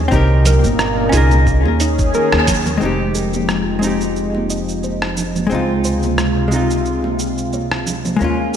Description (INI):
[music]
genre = sunset chillout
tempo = 89 BPM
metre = 4/4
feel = swing 55% on 16ths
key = F minor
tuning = A4 = 439 Hz
[part]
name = hollow-body jazz guitar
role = accompaniment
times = 0.0-8.6 s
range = C3 to Bb4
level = -20 LUFS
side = left 2 dB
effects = auto-pan, ping-pong delay
[part]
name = lush unison pad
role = sustained chords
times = 0.0-8.6 s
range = Bb2 to Ab4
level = -21 LUFS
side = equal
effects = chorus, phaser
[part]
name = upright bass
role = bass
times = 0.0-8.6 s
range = F1 to Eb2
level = -19 LUFS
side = equal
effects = none
[part]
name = soft round pluck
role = arpeggios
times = 0.1-8.6 s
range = Eb4 to C6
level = -26 LUFS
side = equal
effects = chorus, ping-pong delay
[part]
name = dusty soul sampler-style drum kit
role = drums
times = 0.1-8.6 s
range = hi-hat, rim click, shaker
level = -24 LUFS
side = right 1 dB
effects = none
[part]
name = electronic kick drum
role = drums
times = 0.1-2.6 s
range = none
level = -19 LUFS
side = equal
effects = none
[part]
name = congas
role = percussion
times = 0.1-8.4 s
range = none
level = -27 LUFS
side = right 4 dB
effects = none
[sound]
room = moderate lush hall reverb, RT60 2.3 s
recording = dreamy mix soaked in reverb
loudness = -14 LUFS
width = side -9 dB against mid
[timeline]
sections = 0.0-2.8 A section; 2.8-8.6 B section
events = band accent 2.3-2.6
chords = 0.1 Cm7; 1.5 Eb7sus4; 2.8 Fm7; 5.5 Dbmaj7